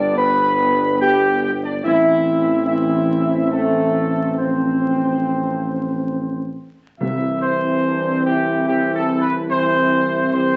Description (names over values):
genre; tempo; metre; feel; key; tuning
classical; 71 BPM; 3/4; straight; C major; A4 = 441 Hz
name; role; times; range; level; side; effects
mellow trumpet section; melody; 0.0-10.6 s; G4 to B5; -24 LUFS; equal; none
bright trombone section; sustained chords; 0.0-10.6 s; E3 to C4; -27 LUFS; equal; none
mellow French horn section; sustained chords; 0.0-10.6 s; A3 to B4; -23 LUFS; equal; none
dark tuba; bass; 0.0-10.6 s; G1 to C2; -25 LUFS; equal; none
timpani; percussion; 7.0-8.2 s; C3; -30 LUFS; equal; none
room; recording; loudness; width
wet stone room reverb, RT60 1.0 s; very old 78 rpm record, vinyl crackle, nothing above 8.0 kHz; -19 LUFS; mono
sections
0.0-7.0 A section; 7.0-10.6 B section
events
none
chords
0.0 G; 1.8 Am; 4.4 F/A; 7.0 C